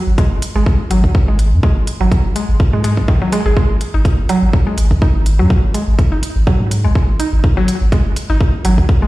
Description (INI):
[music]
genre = minimal techno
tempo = 124 BPM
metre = 4/4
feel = swing 55% on 16ths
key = unclear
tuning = A4 = 440 Hz
[part]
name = punchy sub bass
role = bass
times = 0.1-9.1 s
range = F#1 to G#2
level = -14 LUFS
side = equal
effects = sidechain pumping
[part]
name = mallet-like synth pluck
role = riff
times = 0.2-9.1 s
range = D#3 to G#4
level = -19 LUFS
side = equal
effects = chorus, sidechain pumping, tape echo
[part]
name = electronic hi-hat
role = drums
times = 0.2-8.8 s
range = none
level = -28 LUFS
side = right 1 dB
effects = none
[part]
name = electronic kick drum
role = drums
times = 0.2-9.0 s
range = none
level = -14 LUFS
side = equal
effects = none
[sound]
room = light reverb, digital ambience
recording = played on a big sound system in a bare room, stone room reverb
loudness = -12 LUFS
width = side -18 dB against mid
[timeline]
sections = 0.0-9.1 A section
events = none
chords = 0.0 G#5